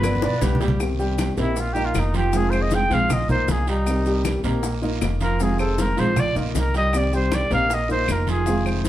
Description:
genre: latin, Cuban son and guajira.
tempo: 157 BPM.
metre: 4/4.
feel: straight.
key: unclear.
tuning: A4 = 440 Hz.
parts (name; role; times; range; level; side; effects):
breathy trumpet; melody; 0.0-8.6 s; Eb4 to G5; -24 LUFS; equal; none.
nylon-string guitar; accompaniment; 0.0-8.9 s; C3 to G4; -27 LUFS; left 1 dB; none.
warm grand piano; arpeggios; 0.0-8.9 s; F3 to G5; -27 LUFS; right 3 dB; none.
upright bass; bass; 0.0-8.9 s; F1 to C2; -24 LUFS; equal; none.
claves; percussion; 0.0-8.8 s; none; -37 LUFS; left 2 dB; none.
congas; percussion; 0.0-8.9 s; none; -28 LUFS; equal; none.
cowbell and bongos; percussion; 0.0-8.9 s; none; -31 LUFS; left 4 dB; none.
guiro; percussion; 0.0-8.9 s; none; -38 LUFS; right 5 dB; none.
maracas; percussion; 0.0-8.9 s; none; -39 LUFS; left 5 dB; none.
bright reedy tenor recorder; second line; 0.2-0.8 s; G4 to D5; -29 LUFS; right 2 dB; none.
room: moderate studio reverb, RT60 0.9 s.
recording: heard from further back in the room.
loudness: -19 LUFS.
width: side -13 dB against mid.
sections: 0.8-8.9 A section.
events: drum fill 0.0-0.8; trumpet solo 0.8-8.9.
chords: 0.0 G7; 0.8 Cm7; 1.6 Bbsus4; 2.3 Fm7; 3.1 Bbsus4; 3.9 Cm7; 4.6 Bbsus4; 5.4 Fm7; 6.2 Bbsus4; 6.9 Cm7; 7.7 Bbsus4.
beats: 0.04 0.42 | 0.80 1.19 1.57 1.95 | 2.33 2.72 3.10 3.48 | 3.87 4.25 4.63 5.02 | 5.40 5.78 6.17 6.55 | 6.93 7.32 7.70 8.08 | 8.47 8.85.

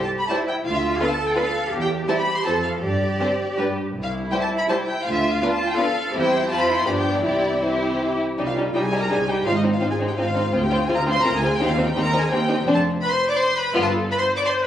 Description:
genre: quick classical-period movement for string orchestra.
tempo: 166 BPM.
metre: 3/4.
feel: rubato.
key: C major, C minor from 8.4 s.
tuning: A4 = 436 Hz.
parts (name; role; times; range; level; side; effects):
warm studio violin section; melody; 0.0-14.7 s; C5 to D6; -25 LUFS; left 1 dB; none.
warm studio cello section; bass; 0.0-14.0 s; C2 to A4; -26 LUFS; right 2 dB; none.
rich studio violin section; second line; 0.3-13.9 s; G3 to C5; -24 LUFS; left 1 dB; none.
warm studio viola section; accompaniment; 0.3-14.7 s; D3 to D5; -26 LUFS; equal; none.
rich studio double bass section; bass; 0.7-14.0 s; F1 to G2; -29 LUFS; right 1 dB; none.
room: moderate scoring stage reverb, RT60 1.7 s.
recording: recorded on a phone in the room, club reverb, compression.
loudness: -19 LUFS.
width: side -10 dB against mid.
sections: 0.0-8.4 A section; 8.4-14.7 B section.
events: none.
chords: 0.0 C (rootless); 0.7 Bdim/D; 1.7 C/E; 2.4 F; 2.8 G5; 3.6 G; 3.9 C; 5.0 Bdim/D; 6.1 C/E; 6.5 F5; 6.9 G7; 7.2 C; 8.4 Cm; 9.5 Ab; 10.5 Bb13/D; 11.6 Cm/Eb; 12.7 Dm7/F; 13.7 G.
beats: 0.29 | 0.65 1.01 1.36 | 1.72 2.08 2.45 | 2.82 3.20 3.57 | 3.95 4.31 4.68 | 5.05 5.41 5.77 | 6.13 6.49 6.85 | 7.23 7.61 8.00 | 8.38 8.74 9.10 | 9.46 9.82 10.18 | 10.54 10.89 11.24 | 11.60 11.96 12.31 | 12.67 13.03 13.38 | 13.74 14.11 14.47.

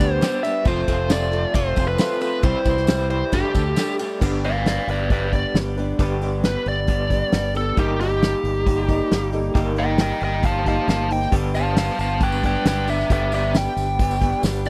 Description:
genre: folk rock and heartland rock.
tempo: 135 BPM.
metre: 4/4.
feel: straight.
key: G mixolydian, G major from 4.2 s.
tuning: A4 = 440 Hz.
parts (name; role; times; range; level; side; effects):
biting lead guitar; melody; 0.0-14.7 s; G4 to A5; -26 LUFS; equal; overdrive, tape echo.
barky reed electric piano; accompaniment; 0.0-14.7 s; C4 to C5; -35 LUFS; equal; none.
picked old ladder-braced acoustic guitar; accompaniment; 0.0-14.7 s; G2 to A4; -32 LUFS; equal; none.
pedal harmonium; sustained chords; 0.0-14.7 s; G3 to B4; -36 LUFS; equal; none.
electric guitar through a small old amp; riff; 0.0-14.7 s; F2 to G4; -32 LUFS; equal; tremolo.
fingered electric bass; bass; 0.0-14.7 s; F1 to D2; -27 LUFS; equal; none.
unplugged drum kit; drums; 0.0-14.7 s; crash cymbal, hi-hat, kick drum, ride cymbal, snare drum; -24 LUFS; equal; none.
tambourine; percussion; 0.2-4.1, 11.3-14.7 s; none; -44 LUFS; equal; none.
room: little or no reverb.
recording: dry, close 1970s-style studio recording.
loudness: -21 LUFS.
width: mono.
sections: 0.0-4.2 A section; 4.2-14.7 B section.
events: lead electric guitar solo 4.2-14.7.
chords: 0.0 G; 0.7 F; 2.4 C; 3.3 Gsus2; 4.2 G; 7.8 Eb/G; 11.3 G.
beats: 0.22 | 0.66 1.11 1.55 1.99 | 2.44 2.88 3.32 3.77 | 4.21 4.66 5.10 5.54 | 5.99 6.43 6.88 7.32 | 7.77 8.21 8.66 9.10 | 9.55 9.99 10.44 10.88 | 11.33 11.77 12.21 12.66 | 13.10 13.55 13.99 14.44.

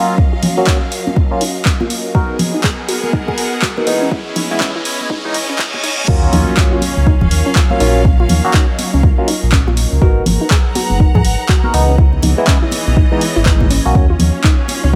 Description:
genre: deep house.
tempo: 122 BPM.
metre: 4/4.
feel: swing 61% on 16ths.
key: Eb minor.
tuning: A4 = 440 Hz.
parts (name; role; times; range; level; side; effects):
hollow soft pad; sustained chords; 0.0-15.0 s; Gb3 to Eb5; -29 LUFS; equal; chorus, sidechain pumping.
barky tine electric piano; stabs; 0.0-14.1 s; Fb3 to Bb4; -21 LUFS; equal; phaser, sidechain pumping, low-pass filter, dub echo.
riser, reverse cymbal and impact; sound effects; 2.5-8.0 s; none; -28 LUFS; equal; none.
clear studio string section; texture; 0.0-15.0 s; Fb3 to Bb5; -26 LUFS; equal; sidechain pumping.
soft round pluck; arpeggios; 0.2-15.0 s; Db4 to Cb5; -26 LUFS; equal; chorus, sidechain pumping, dub echo.
electronic kick drum; drums; 0.2-15.0 s; none; -15 LUFS; equal; overdrive.
punchy analog drum machine; drums; 0.4-14.8 s; crash cymbal, handclaps, hi-hat; -23 LUFS; equal; overdrive, high-pass filter on snare, high-pass filter on hats, high-pass filter on cymbals, high-pass filter on room.
congas; percussion; 0.4-14.9 s; none; -23 LUFS; equal; sidechain pumping on perc.
sub bass with octave; bass; 6.1-15.0 s; Eb1 to Ab2; -17 LUFS; equal; sidechain pumping.
room: light reverb, digital ambience.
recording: high-pass filter.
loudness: -14 LUFS.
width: mono.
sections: 0.0-6.1 A section; 6.1-15.0 B section.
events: build-up 0.0-6.1; filter sweep on tine electric piano 0.0-6.1; filter sweep on synth arpeggio sound 0.0-6.1; filter sweep 0.0-6.1; riser 2.5-6.1; reverse cymbal 5.1-6.1; drop 6.1-15.0; impact 6.1-8.0.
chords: 0.0 Ebm9; 2.1 Abm9; 3.9 Dbm9; 6.1 Ebm9; 10.0 Abm9; 11.7 Dbm9; 14.0 Ebm9.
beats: | 0.18 0.67 1.16 1.66 | 2.15 2.64 3.13 3.62 | 4.12 4.61 5.10 5.59 | 6.08 6.57 7.07 7.56 | 8.05 8.54 9.03 9.53 | 10.02 10.51 11.00 11.49 | 11.98 12.47 12.97 13.46 | 13.95 14.44 14.93.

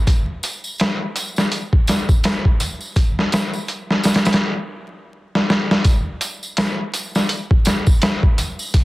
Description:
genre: trip hop.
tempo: 83 BPM.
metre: 4/4.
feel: swing 59% on 16ths.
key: none.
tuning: none.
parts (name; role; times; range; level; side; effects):
trip hop sampler-style drum kit; drums; 0.1-8.8 s; hi-hat, kick drum, snare drum; -16 LUFS; equal; none.
tambourine; percussion; 0.1-8.8 s; none; -30 LUFS; right 1 dB; none.
room: light reverb, digital ambience.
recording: dense, heavily limited modern master, vinyl crackle.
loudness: -16 LUFS.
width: side -19 dB against mid.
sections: 0.0-5.9 A section; 5.9-8.8 B section.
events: stop 4.4-5.9; drum fill 5.3-5.9.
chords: none.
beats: | 0.07 0.79 1.51 2.24 | 2.96 3.68 4.41 5.13 | 5.85 6.58 7.30 8.02 | 8.74.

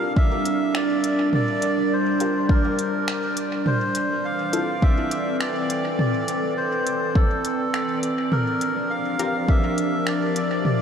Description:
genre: ambient dub.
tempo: 103 BPM.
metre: 4/4.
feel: swing 58% on 16ths.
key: G dorian.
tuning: A4 = 440 Hz.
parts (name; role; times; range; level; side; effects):
melodica; melody; 0.0-10.8 s; A4 to F5; -26 LUFS; equal; dub echo.
warbly tape-like pad; sustained chords; 0.0-10.8 s; E3 to Bb4; -24 LUFS; right 1 dB; chorus, built-in reverb, phaser.
filtered dub chord stab; stabs; 0.0-4.7, 9.2-9.4 s; E4 to Bb4; -34 LUFS; left 3 dB; none.
bubbling stepped-filter texture; texture; 0.0-10.8 s; D5; -35 LUFS; right 3 dB; chorus, built-in reverb.
electronic kick drum; drums; 0.2-9.6 s; none; -19 LUFS; equal; overdrive.
organic electronic drum kit; drums; 0.5-10.8 s; finger snaps, hi-hat, toms; -29 LUFS; equal; overdrive, dub echo.
room: wet huge ambient reverb, RT60 8.7 s.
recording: dreamy mix soaked in reverb.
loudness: -20 LUFS.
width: side -7 dB against mid.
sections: 0.0-10.8 A section.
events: none.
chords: 0.0 Gm; 3.7 Fmaj7 (rootless); 8.3 Gm7.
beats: 0.16 0.75 | 1.33 1.91 2.49 3.08 | 3.66 4.24 4.83 5.41 | 5.99 6.57 7.16 7.74 | 8.32 8.90 9.48 10.07 | 10.65.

